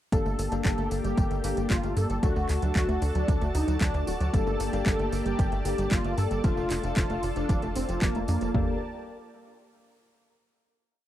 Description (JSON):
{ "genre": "italo disco", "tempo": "114 BPM", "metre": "4/4", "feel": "straight", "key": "G minor", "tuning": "A4 = 439 Hz", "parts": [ { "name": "wide unison lead", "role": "melody", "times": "0.1-8.7 s", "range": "Bb3 to A4", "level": "-33 LUFS", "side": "equal", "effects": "ensemble chorus, tape echo" }, { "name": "lush unison pad", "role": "sustained chords", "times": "0.1-8.8 s", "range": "Bb3 to A5", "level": "-35 LUFS", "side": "equal", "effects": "chorus" }, { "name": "wide unison pluck", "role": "arpeggios", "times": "0.1-8.8 s", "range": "F3 to D4", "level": "-36 LUFS", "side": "right 3 dB", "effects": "tape echo" }, { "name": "clear baby grand piano", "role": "stabs", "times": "0.1-8.7 s", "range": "A3 to A4", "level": "-35 LUFS", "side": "left 6 dB", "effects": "none" }, { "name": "tight sequencer bass", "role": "bass", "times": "0.1-8.8 s", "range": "D1 to G2", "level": "-30 LUFS", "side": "equal", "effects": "none" }, { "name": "house drum kit", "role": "drums", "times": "0.1-8.7 s", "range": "kick drum, toms", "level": "-28 LUFS", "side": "equal", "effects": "overdrive" }, { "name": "house drum kit", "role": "drums", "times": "0.1-8.5 s", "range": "handclaps, hi-hat, tambourine", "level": "-36 LUFS", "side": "equal", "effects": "overdrive" } ], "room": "little or no reverb", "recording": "dry, close 1970s-style studio recording", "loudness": "-24 LUFS", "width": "side -12 dB against mid", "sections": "0.1-8.5 chorus; 8.5-10.7 final chord", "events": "none", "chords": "0.1 Gmadd9; 2.2 D; 4.3 Gmadd9; 6.4 Dm/F; 8.5 Gmadd9", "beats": "| 0.12 0.65 1.18 1.70 | 2.23 2.76 3.28 3.81 | 4.33 4.86 5.39 5.91 | 6.44 6.97 7.49 8.02 | 8.54" }